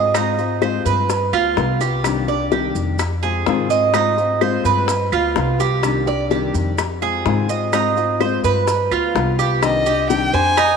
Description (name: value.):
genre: latin, Cuban son and guajira.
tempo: 127 BPM.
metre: 4/4.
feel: straight.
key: C harmonic minor.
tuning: A4 = 439 Hz.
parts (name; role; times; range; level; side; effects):
fingerpicked steel-string acoustic guitar; accompaniment; 0.0-10.6 s; C3 to G4; -24 LUFS; left 11 dB; none.
Cuban tres; arpeggios; 0.0-10.8 s; Eb4 to Eb5; -19 LUFS; right 7 dB; none.
upright bass; bass; 0.0-10.8 s; C2 to Ab2; -23 LUFS; left 1 dB; none.
bongos; percussion; 0.1-10.8 s; none; -25 LUFS; left 12 dB; none.
claves; percussion; 0.1-10.8 s; none; -30 LUFS; right 11 dB; none.
maracas; percussion; 0.1-10.8 s; none; -35 LUFS; right 12 dB; none.
warm violin; melody; 9.6-10.8 s; Eb5 to Ab5; -17 LUFS; left 1 dB; none.
room: moderate plate reverb, RT60 3.7 s.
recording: 1960s-style stereo with parts hard left and right.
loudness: -16 LUFS.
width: side -6 dB against mid.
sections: 0.0-9.6 A section; 9.6-10.8 B section.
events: none.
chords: 0.1 Ab6; 1.1 G7; 2.0 Cmadd9; 3.0 Fm7; 3.9 Ab6; 4.9 G7; 5.8 Cmadd9; 6.8 Fm7; 7.7 Ab6; 8.7 G7; 9.6 Cmadd9.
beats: | 0.14 0.62 1.09 1.57 | 2.04 2.52 2.99 3.46 | 3.94 4.41 4.89 5.36 | 5.83 6.31 6.78 7.26 | 7.73 8.21 8.68 9.15 | 9.63 10.10 10.57.